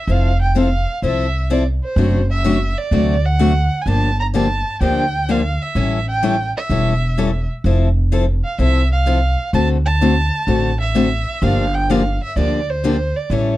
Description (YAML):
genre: acoustic string swing (jazz manouche)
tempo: 127 BPM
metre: 4/4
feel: swing 66% on 8ths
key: D minor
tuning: A4 = 440 Hz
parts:
  - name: dark violin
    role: melody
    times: 0.0-13.6 s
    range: C5 to Bb5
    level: -22 LUFS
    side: right 3 dB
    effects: none
  - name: picked steel-string acoustic guitar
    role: accompaniment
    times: 0.1-13.5 s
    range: C3 to A4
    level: -18 LUFS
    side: left 3 dB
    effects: none
  - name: upright bass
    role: bass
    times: 0.1-13.6 s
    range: E1 to D2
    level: -18 LUFS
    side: equal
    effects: none
room: light reverb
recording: dark, warm production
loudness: -15 LUFS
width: side -16 dB against mid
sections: 0.1-13.6 A section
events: none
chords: 0.1 Fmaj7; 2.0 D7/F#; 3.9 Gm7; 5.8 A7; 7.6 Fmaj7; 9.5 D7; 11.4 Gm7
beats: | 0.08 0.56 1.03 1.50 | 1.98 2.45 2.92 3.39 | 3.87 4.34 4.81 5.28 | 5.76 6.23 6.70 7.17 | 7.64 8.12 8.59 9.06 | 9.53 10.01 10.48 10.95 | 11.42 11.89 12.36 12.83 | 13.31